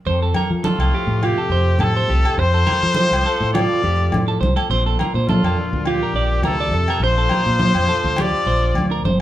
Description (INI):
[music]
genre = highlife guitar band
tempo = 104 BPM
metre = 4/4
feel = swing 54% on 16ths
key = F major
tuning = A4 = 441 Hz
[part]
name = electric guitar at the edge of break-up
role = accompaniment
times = 0.1-9.2 s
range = F2 to A4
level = -29 LUFS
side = left 4 dB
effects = spring reverb
[part]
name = electric guitar at the edge of break-up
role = arpeggios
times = 0.1-9.2 s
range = F4 to D5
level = -23 LUFS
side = right 5 dB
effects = none
[part]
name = fingered electric bass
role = bass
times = 0.1-9.2 s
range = G1 to F3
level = -20 LUFS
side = equal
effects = none
[part]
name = congas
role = percussion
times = 0.1-9.2 s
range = none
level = -23 LUFS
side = equal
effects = none
[part]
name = agogo bells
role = percussion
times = 0.3-8.9 s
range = none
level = -29 LUFS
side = left 3 dB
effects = none
[part]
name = bright trumpet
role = melody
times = 0.6-9.1 s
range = F4 to D5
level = -21 LUFS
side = left 3 dB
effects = none
[part]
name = breathy tenor saxophone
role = second line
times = 0.7-9.1 s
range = A2 to F3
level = -30 LUFS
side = left 2 dB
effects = none
[sound]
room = moderate large studio reverb, RT60 1.0 s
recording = band playing live in one room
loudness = -16 LUFS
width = side -13 dB against mid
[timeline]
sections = 0.1-9.2 A section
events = none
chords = 0.1 F; 4.7 Bbadd9